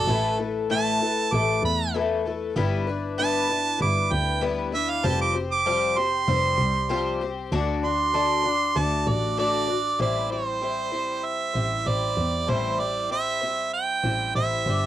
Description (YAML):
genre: folk rock and heartland rock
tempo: 97 BPM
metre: 4/4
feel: straight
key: A minor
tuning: A4 = 440 Hz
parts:
  - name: clear harmonica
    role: melody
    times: 0.0-14.9 s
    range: A4 to D6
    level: -24 LUFS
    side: right 5 dB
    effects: cassette tape
  - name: picked twelve-string acoustic guitar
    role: accompaniment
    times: 0.0-14.9 s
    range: A2 to D5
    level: -27 LUFS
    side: left 6 dB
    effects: cassette tape
  - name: warm double bass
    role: bass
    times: 0.0-14.9 s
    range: F1 to E2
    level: -28 LUFS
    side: equal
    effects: none
room: light reverb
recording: home recording on cassette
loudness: -22 LUFS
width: side -12 dB against mid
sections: 0.0-10.0 A section; 10.0-14.9 B section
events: harmonica solo 0.0-10.0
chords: 0.1 Asus2; 2.6 G6; 5.0 Fsus2; 7.5 D; 10.0 Am7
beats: | 0.08 0.70 1.32 1.94 | 2.56 3.18 3.80 4.42 | 5.04 5.66 6.28 6.89 | 7.51 8.13 8.76 9.38 | 10.00 10.62 11.24 11.87 | 12.49 13.11 13.73 14.35